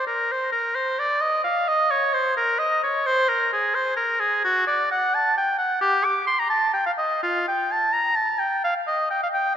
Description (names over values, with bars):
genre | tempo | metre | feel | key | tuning
classical, baroque-style fantasia for unaccompanied oboe | 87 BPM (dotted quarters) | 12/8 | rubato | C minor, G minor from 4.4 s | A4 = 440 Hz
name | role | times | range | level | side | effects
clear oboe | solo | 0.0-9.5 s | F4 to D6 | -20 LUFS | equal | none
room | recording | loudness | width
wet concert hall reverb, RT60 2.3 s | nothing above 7.8 kHz | -20 LUFS | side -9 dB against mid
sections
0.0-9.6 A section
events
none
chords
none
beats
0.31 1.00 | 1.69 2.37 3.06 3.75 | 4.44 5.13 5.82 6.51 | 7.23 7.94 8.63 9.32